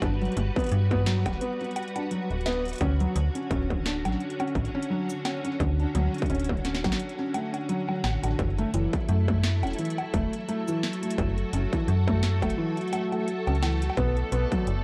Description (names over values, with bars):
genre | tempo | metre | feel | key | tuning
IDM | 86 BPM | 4/4 | swing 56% on 16ths | unclear | A4 = 440 Hz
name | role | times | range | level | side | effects
soft string machine | sustained chords | 0.0-14.8 s | D3 to D5 | -36 LUFS | equal | ensemble chorus, vintage 12-bit sampler grit
felt-muted upright piano | arpeggios | 0.0-14.6 s | E3 to D4 | -33 LUFS | equal | delay
metallic FM bass | bass | 0.0-14.8 s | D1 to G2 | -28 LUFS | equal | none
electro analog drum machine | drums | 0.0-14.8 s | bongos, hi-hat, shaker, snare drum, toms | -37 LUFS | equal | overdrive
electronic kick drum | drums | 0.0-14.6 s | none | -33 LUFS | equal | distortion, overdrive
bubbling stepped-filter texture | texture | 8.4-14.8 s | A3 to A4 | -42 LUFS | equal | chorus, built-in reverb
room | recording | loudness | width
light reverb | worn, warbling old tape, cassette tape, warbly pitch drift | -27 LUFS | mono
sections
0.0-14.8 A section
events
none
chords
0.0 Gmaj7; 2.8 Dmaj7; 8.4 F#m7; 14.0 Bm7